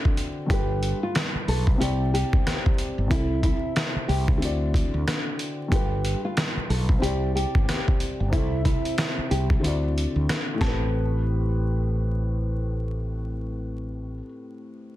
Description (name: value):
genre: hip hop, boom-bap hip-hop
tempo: 92 BPM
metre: 4/4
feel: swing 60% on 16ths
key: A minor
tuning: A4 = 440 Hz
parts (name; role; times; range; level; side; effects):
- dark upright piano; accompaniment; 0.0-15.0 s; G2 to E5; -30 LUFS; left 2 dB; cassette tape, high-pass filter, low-pass filter
- trip hop sampler-style drum kit; drums; 0.1-10.8 s; hi-hat, kick drum, snare drum; -24 LUFS; equal; none
- nylon-string guitar; melody; 0.5-12.9 s; E4 to A4; -31 LUFS; right 1 dB; high-pass filter, low-pass filter, ping-pong delay
- mellow fretless electric bass; bass; 0.5-14.2 s; G1 to D2; -26 LUFS; equal; none
room: little or no reverb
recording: dense, heavily limited modern master, vinyl crackle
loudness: -22 LUFS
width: side -14 dB against mid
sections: 0.5-10.9 A section; 10.9-13.5 B section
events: kick muted 9.6-10.9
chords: 0.0 D7; 0.5 G7; 1.8 Cadd9; 3.1 Am/C; 4.4 D7; 5.7 G7; 7.0 Cadd9; 8.3 Am/C; 9.6 D7; 10.6 Am9